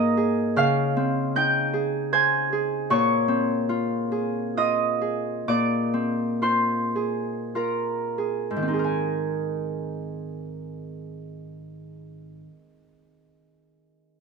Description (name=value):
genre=classical, solo harp piece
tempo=43-79 BPM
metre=3/4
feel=rubato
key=Ab major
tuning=A4 = 440 Hz
part: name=Celtic harp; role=solo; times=0.0-12.7 s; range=Ab2 to Ab6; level=-23 LUFS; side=right 1 dB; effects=none
room=light reverb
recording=none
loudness=-22 LUFS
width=side -4 dB against mid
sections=0.0-8.9 A section; 8.9-12.7 B section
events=slowing down 1.7-8.9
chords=0.0 Abadd9; 0.6 Dbmaj9; 2.9 Bbm9; 5.5 Bb9; 8.9 Abadd9